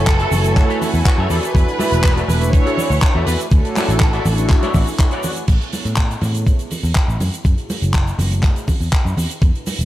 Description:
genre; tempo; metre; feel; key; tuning
nu-disco, nu disco; 122 BPM; 4/4; straight; A major; A4 = 440 Hz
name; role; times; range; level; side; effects
warm symphonic violin section; melody; 0.0-5.0 s; F#4 to C#5; -23 LUFS; right 1 dB; dub echo
rich studio string section; sustained chords; 0.0-5.5 s; B4 to G#5; -32 LUFS; left 3 dB; sidechain pumping
picked electric bass; bass; 0.0-9.8 s; E1 to A2; -18 LUFS; equal; none
electronic kick drum; drums; 0.1-9.5 s; none; -14 LUFS; equal; overdrive
swinging big-band drum kit; drums; 0.1-9.8 s; crash cymbal, handclaps, hi-hat, shaker; -25 LUFS; equal; none
semi-hollow electric guitar; riff; 0.2-5.4 s; F#4 to B5; -26 LUFS; left 2 dB; ensemble chorus
congas; percussion; 0.3-9.8 s; none; -26 LUFS; right 1 dB; none
room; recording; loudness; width
studio reverb; dark, warm production; -14 LUFS; side -14 dB against mid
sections
0.0-5.5 A section; 5.5-9.8 B section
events
drop 0.0-5.5; clean electric guitar fill 0.1-1.6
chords
0.0 F#m7; 1.3 E9sus4; 3.5 Dmaj9; 5.5 Amaj9; 7.2 F#m7; 9.2 E9sus4

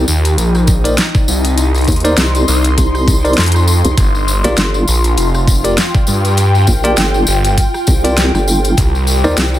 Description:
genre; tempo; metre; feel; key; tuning
glitch hop; 100 BPM; 4/4; swing 57% on 16ths; G minor; A4 = 440 Hz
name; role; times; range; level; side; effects
vowel-sweep wobble bass; bass; 0.0-9.6 s; G1 to Eb2; -14 LUFS; equal; chorus
ethereal airy pad; texture; 0.0-9.6 s; Eb4 to C6; -19 LUFS; left 2 dB; ensemble chorus, built-in reverb, sidechain pumping
phased detuned saw bass; bass; 0.1-9.2 s; F1 to G2; -13 LUFS; equal; phaser, overdrive
tambourine; percussion; 0.1-9.6 s; none; -23 LUFS; left 1 dB; none
dubstep drum kit; drums; 0.3-9.5 s; hi-hat, rim click, snare drum; -17 LUFS; equal; overdrive
electronic kick drum; drums; 0.7-8.9 s; none; -13 LUFS; equal; overdrive
bell-like tine electric piano; stabs; 0.8-9.4 s; Eb4 to D5; -17 LUFS; equal; sidechain pumping, digital delay
room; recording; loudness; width
little or no reverb; none; -10 LUFS; side -13 dB against mid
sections
0.0-9.6 A section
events
none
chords
0.0 Cm7; 4.0 Gm7; 8.8 Cm9

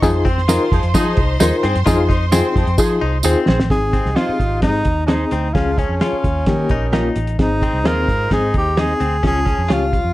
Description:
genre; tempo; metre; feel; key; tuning
uptempo 1960s-style soul; 130 BPM; 4/4; straight; Ab major; A4 = 440 Hz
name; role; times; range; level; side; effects
clear studio violin section; second line; 0.0-3.7 s; C5 to C6; -26 LUFS; right 2 dB; analog delay
mellow saxophone section; second line; 0.0-9.9 s; C3 to C5; -28 LUFS; equal; none
reed electric piano; accompaniment; 0.0-9.9 s; Bb3 to Bb4; -21 LUFS; left 3 dB; overdrive, fast tremolo
vintage muted fingered electric bass; bass; 0.0-10.1 s; Ab1 to F3; -20 LUFS; equal; none
cloth-damped thuddy drum kit; drums; 0.0-10.0 s; hi-hat, kick drum, snare drum; -19 LUFS; equal; none
tambourine; percussion; 0.0-3.3 s; none; -26 LUFS; right 5 dB; none
direct-recorded clean electric guitar; riff; 0.2-10.1 s; C4 to F4; -26 LUFS; left 7 dB; none
direct-recorded clean electric guitar; stabs; 0.5-9.9 s; Eb4 to Eb5; -26 LUFS; right 3 dB; analog delay
breathy tenor saxophone; melody; 3.7-10.1 s; Db4 to Bb4; -21 LUFS; equal; none
room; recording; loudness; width
light reverb; none; -14 LUFS; side -16 dB against mid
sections
0.0-3.7 A section; 3.7-10.1 B section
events
drum fill 2.8-3.7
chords
0.0 Fm7; 3.7 Ab; 5.5 Db; 6.5 Eb; 7.4 Ab; 9.2 Db

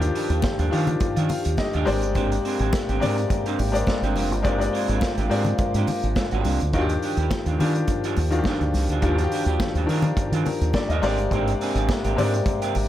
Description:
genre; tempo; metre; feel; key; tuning
disco; 105 BPM; 4/4; straight; Eb major; A4 = 442 Hz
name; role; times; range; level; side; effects
electric guitar through a small old amp; accompaniment; 0.0-12.8 s; G3 to Ab4; -30 LUFS; right 6 dB; wide subtle chorus
warm grand piano; accompaniment; 0.0-12.9 s; Eb3 to F5; -26 LUFS; left 3 dB; none
dark French horn section; sustained chords; 0.0-12.9 s; C3 to G4; -29 LUFS; left 2 dB; none
deep dub fingered electric bass; bass; 0.0-12.9 s; F1 to Eb3; -24 LUFS; right 1 dB; none
vintage drum kit; drums; 0.0-12.9 s; hi-hat, kick drum, snare drum; -28 LUFS; right 1 dB; none
congas; percussion; 0.4-12.9 s; none; -31 LUFS; left 4 dB; none
room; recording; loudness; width
little or no reverb; none; -20 LUFS; side -12 dB against mid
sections
0.0-12.9 A section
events
grand piano fill 1.0-2.2, 10.2-11.3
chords
0.0 Ebmaj9; 1.9 Abmaj9#11; 6.7 Ebmaj9; 11.0 Abmaj9#11

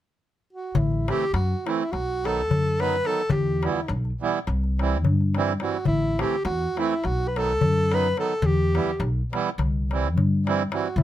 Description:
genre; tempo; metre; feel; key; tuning
balkan folk, Balkan wedding band; 211 BPM (eighths); 9/8; straight; A dorian sharp4; A4 = 440 Hz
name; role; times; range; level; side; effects
warm alto saxophone; melody; 0.5-11.0 s; E4 to B4; -26 LUFS; equal; none
upright bass; bass; 0.7-11.0 s; A1 to G2; -25 LUFS; left 1 dB; none
darbuka; percussion; 0.8-11.0 s; none; -27 LUFS; left 3 dB; none
accordion; accompaniment; 1.1-10.9 s; D#3 to E4; -27 LUFS; right 7 dB; none
room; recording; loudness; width
light reverb; none; -21 LUFS; side -12 dB against mid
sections
0.7-11.0 A section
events
none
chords
0.0 N.C.; 0.7 Am; 1.9 B; 3.3 Em; 4.5 C; 5.9 Am; 7.0 B; 8.4 Em; 9.6 C

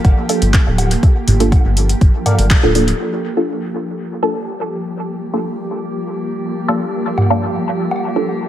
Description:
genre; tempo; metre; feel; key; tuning
dub techno; 122 BPM; 4/4; straight; G minor; A4 = 440 Hz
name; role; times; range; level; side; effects
granular cloud pad; sustained chords; 0.0-8.5 s; F3 to G4; -22 LUFS; right 1 dB; built-in reverb, sidechain pumping
soft dub sub bass; bass; 0.0-2.9 s; D1 to G1; -16 LUFS; equal; tube saturation, sidechain pumping
deep house drum kit; drums; 0.0-3.0 s; handclaps, hi-hat; -22 LUFS; equal; dub echo
electronic kick drum; drums; 0.0-2.6 s; none; -11 LUFS; equal; none
electronic woodblock and toms; percussion; 0.0-2.4, 7.2-8.0 s; none; -19 LUFS; equal; sidechain pumping on toms, sidechain pumping on perc, dub echo
filtered dub chord stab; stabs; 0.3-8.3 s; Bb3 to A4; -20 LUFS; equal; phaser, vintage 12-bit sampler grit, sidechain pumping, dub echo
wavetable chord stab; riff; 2.3-2.5 s; A4 to F5; -27 LUFS; left 3 dB; sidechain pumping, dub echo
metallic inharmonic drone; texture; 4.1-8.5 s; G3 to G4; -28 LUFS; left 6 dB; chorus, built-in reverb, sidechain pumping
room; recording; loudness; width
light reverb; none; -14 LUFS; side -11 dB against mid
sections
0.0-3.0 A section; 3.0-8.5 B section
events
band accent 2.5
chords
0.0 Gm7

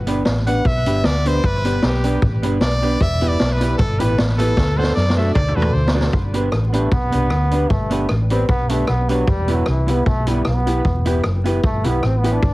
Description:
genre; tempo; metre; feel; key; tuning
ska; 153 BPM; 4/4; swing 53% on 8ths; G major; A4 = 439 Hz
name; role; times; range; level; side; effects
hollow-body short-scale fingered electric bass; bass; 0.0-12.5 s; E1 to F#2; -19 LUFS; equal; none
semi-hollow electric guitar; accompaniment; 0.1-12.4 s; A3 to B4; -24 LUFS; right 3 dB; plate reverb
dark upright piano; stabs; 0.1-12.4 s; D4 to B4; -26 LUFS; left 3 dB; tape echo, plate reverb
street-band drum kit; drums; 0.1-12.5 s; hi-hat, kick drum, rim click, snare drum, toms; -21 LUFS; equal; none
brilliant trumpet; melody; 0.5-5.9 s; G4 to F#5; -24 LUFS; equal; tape echo
clear trombone; melody; 6.7-12.5 s; E3 to D4; -24 LUFS; equal; none
room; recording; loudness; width
light reverb; heavily compressed radio sound, vinyl crackle; -15 LUFS; side -19 dB against mid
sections
0.0-6.1 A section; 6.1-12.5 A section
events
trumpet solo 0.0-6.1; drum fill 4.6-6.1; trombone solo 6.1-12.5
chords
0.0 G; 3.0 Em; 4.6 D; 6.1 G; 9.3 Em

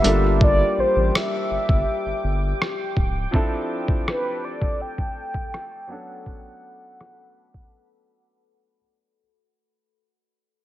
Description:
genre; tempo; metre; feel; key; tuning
contemporary R&B; 82 BPM; 4/4; straight; unclear; A4 = 440 Hz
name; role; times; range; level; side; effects
mellow horn-like synth lead; melody; 0.0-8.5 s; B4 to G5; -25 LUFS; equal; chorus, digital delay
clear concert grand piano; accompaniment; 0.0-9.2 s; F3 to A4; -28 LUFS; right 1 dB; none
deep dark ambient pad; sustained chords; 0.0-9.2 s; G4 to D6; -30 LUFS; left 3 dB; chorus, built-in reverb
saturated sub bass; bass; 0.0-3.3 s; C#1 to A1; -23 LUFS; equal; none
dusty soul sampler-style drum kit; drums; 0.0-7.7 s; hi-hat, kick drum, rim click; -22 LUFS; equal; overdrive
room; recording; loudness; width
digital ambience; low-pass filter; -20 LUFS; side -14 dB against mid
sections
0.0-9.2 A section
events
fade-out 0.0-9.2; filter sweep 0.0-9.2; break 7.7-9.2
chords
0.0 Gm7; 3.3 Dm7; 5.9 Bm7

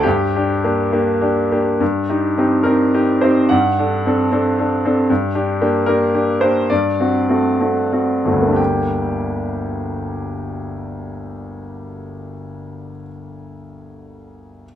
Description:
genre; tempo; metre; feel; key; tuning
classical, romantic character piece for solo piano; 58-80 BPM (dotted quarters); 6/8; rubato; G minor; A4 = 442 Hz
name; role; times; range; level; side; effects
bright grand piano; solo; 0.0-14.7 s; G1 to G5; -16 LUFS; equal; none
room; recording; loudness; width
light reverb; none; -15 LUFS; side -10 dB against mid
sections
0.0-1.8 A section; 1.8-8.6 B section; 8.6-12.4 C section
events
slowing down 4.3-8.6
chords
0.1 Gm; 1.8 Cm/G; 3.5 D7/G; 5.1 Gm; 6.7 D7/G; 8.6 Gm

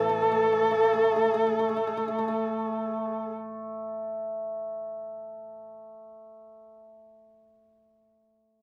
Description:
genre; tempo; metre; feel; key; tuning
chinese traditional, Chinese chamber ensemble; 72 BPM; 4/4; rubato; unclear; A4 = 441 Hz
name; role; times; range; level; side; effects
dark erhu; melody; 0.0-3.3 s; A4; -34 LUFS; equal; none
hammered dulcimer; second line; 0.0-6.7 s; A3; -34 LUFS; equal; none
xiao; second line; 0.0-3.3 s; A4; -28 LUFS; equal; none
steel-string zither; accompaniment; 0.0-5.8 s; A2 to A3; -42 LUFS; equal; none
room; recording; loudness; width
light reverb; close, detailed microphones; -28 LUFS; mono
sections
0.0-2.6 A section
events
none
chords
none

